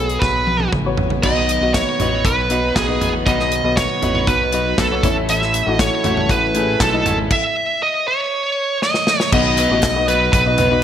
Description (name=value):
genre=piano-driven pop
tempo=119 BPM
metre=4/4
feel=straight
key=B mixolydian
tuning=A4 = 440 Hz
part: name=high-gain lead guitar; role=melody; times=0.0-10.8 s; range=G#4 to E5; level=-18 LUFS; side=right 2 dB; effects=distortion
part: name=warm upright piano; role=accompaniment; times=0.0-10.8 s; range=A2 to F#5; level=-22 LUFS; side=left 5 dB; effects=none
part: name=chorused synth bass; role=bass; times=0.0-10.8 s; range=G#1 to B1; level=-23 LUFS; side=equal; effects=none
part: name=modern studio drum kit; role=drums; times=0.1-10.7 s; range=crash cymbal, handclaps, hi-hat, kick drum, snare drum, toms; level=-20 LUFS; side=equal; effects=none
part: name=electric guitar at the edge of break-up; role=riff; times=1.2-10.8 s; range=A2 to B4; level=-25 LUFS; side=right 3 dB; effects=lush chorus
part: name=group handclap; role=percussion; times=9.6-9.9 s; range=none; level=-31 LUFS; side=left 7 dB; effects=none
room=moderate plate reverb, RT60 2.3 s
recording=bright 1980s-style digital production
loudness=-15 LUFS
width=side -9 dB against mid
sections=0.0-1.2 A section; 1.2-9.3 B section; 9.3-10.8 C section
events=drum fill 0.2-1.2, 8.8-9.3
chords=0.0 Bsus2; 1.2 B; 5.0 A; 9.3 B